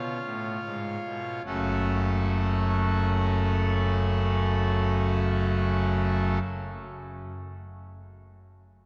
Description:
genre	classical, chorale-style piece for pipe organ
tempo	37 BPM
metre	4/4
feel	straight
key	F# minor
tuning	A4 = 438 Hz
part	pipe organ, trumpet	solo	0.0-6.4 s	F#1 to F#5	-27 LUFS	equal	none
room	wet cathedral reverb, RT60 4.5 s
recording	dark, warm production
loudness	-26 LUFS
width	mono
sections	0.0-1.5 A section; 1.5-8.0 B section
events	slowing down 0.0-1.5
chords	0.0 C#7; 1.5 F#m

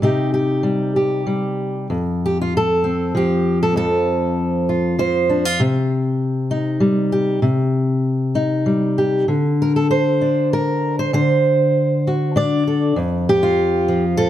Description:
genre	folk, solo fingerstyle acoustic guitar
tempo	97 BPM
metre	3/4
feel	straight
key	unclear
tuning	A4 = 440 Hz
part	fingerpicked steel-string acoustic guitar	solo	0.0-14.3 s	F2 to D5	-16 LUFS	equal	none
room	moderate large studio reverb, RT60 1.4 s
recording	none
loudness	-16 LUFS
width	side -12 dB against mid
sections	0.0-1.9 A section; 1.9-14.3 B section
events	none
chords	0.0 Cm; 1.9 F; 5.6 Cm; 9.3 D; 13.0 F

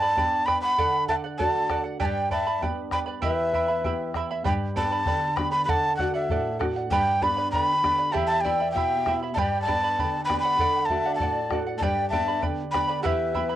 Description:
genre	andean folk, Andean ensemble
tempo	98 BPM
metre	2/4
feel	straight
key	unclear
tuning	A4 = 443 Hz
part	breathy bright large quena	melody	0.0-13.6 s	E5 to B5	-24 LUFS	equal	cassette tape
part	pan flute	second line	0.0-4.1, 8.1-13.6 s	B4 to G5	-32 LUFS	left 6 dB	cassette tape
part	charango	accompaniment	0.0-13.6 s	E4 to B5	-30 LUFS	right 6 dB	cassette tape
part	nylon-string guitar	accompaniment	0.0-13.6 s	E2 to G4	-32 LUFS	left 1 dB	cassette tape
part	bombo	percussion	0.2-13.5 s	none	-32 LUFS	left 2 dB	none
room	moderate small room reverb, RT60 0.5 s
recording	home recording on cassette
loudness	-22 LUFS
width	side -12 dB against mid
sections	0.0-4.5 A section; 4.5-13.6 A section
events	none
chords	0.0 G; 0.8 D; 2.0 G; 3.2 Em; 4.5 G; 5.7 D; 6.9 G; 8.1 Em; 9.4 G; 10.6 D; 11.8 G; 13.0 Em

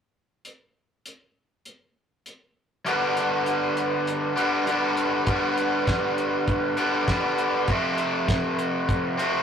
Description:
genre	indie rock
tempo	100 BPM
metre	4/4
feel	straight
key	G mixolydian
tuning	A4 = 442 Hz
part	cloth-damped thuddy drum kit	drums	0.4-9.3 s	hi-hat, kick drum, snare drum	-28 LUFS	equal	none
part	raw garage guitar	riff	2.8-9.4 s	F2 to D4	-22 LUFS	equal	overdrive
room	moderate booth ambience, RT60 0.2 s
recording	rough rehearsal-room recording, tube saturation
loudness	-22 LUFS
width	side -7 dB against mid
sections	0.4-2.9 A section; 2.9-9.4 B section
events	none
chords	0.4 N.C.; 2.9 G; 7.7 F

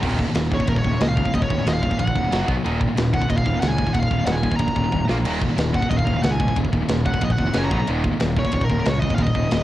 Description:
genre	heavy metal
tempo	184 BPM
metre	4/4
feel	straight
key	Eb minor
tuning	A4 = 439 Hz
part	high-gain distorted guitar	riff	0.0-9.6 s	Eb2 to B3	-26 LUFS	right 5 dB	distortion, cassette tape
part	scooped high-gain guitar	riff	0.0-9.6 s	Eb2 to B3	-26 LUFS	left 5 dB	distortion, cassette tape
part	fuzz fingered electric bass	bass	0.0-9.6 s	Eb1 to Db2	-24 LUFS	equal	overdrive
part	tight metal drum kit	drums	0.0-9.6 s	crash cymbal, kick drum, ride cymbal, snare drum	-24 LUFS	equal	cassette tape
part	high-gain lead guitar	melody	0.5-9.6 s	Bb4 to Bb5	-27 LUFS	equal	distortion, tape echo
room	small room ambience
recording	home recording on cassette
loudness	-18 LUFS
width	side -14 dB against mid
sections	0.0-9.6 A section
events	drum fill 4.9-5.3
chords	0.0 Eb5; 2.3 Gb5; 2.5 B5; 2.6 Eb5; 5.1 Bb5; 5.3 Eb5; 7.5 Gb5; 7.7 B5; 7.9 Eb5

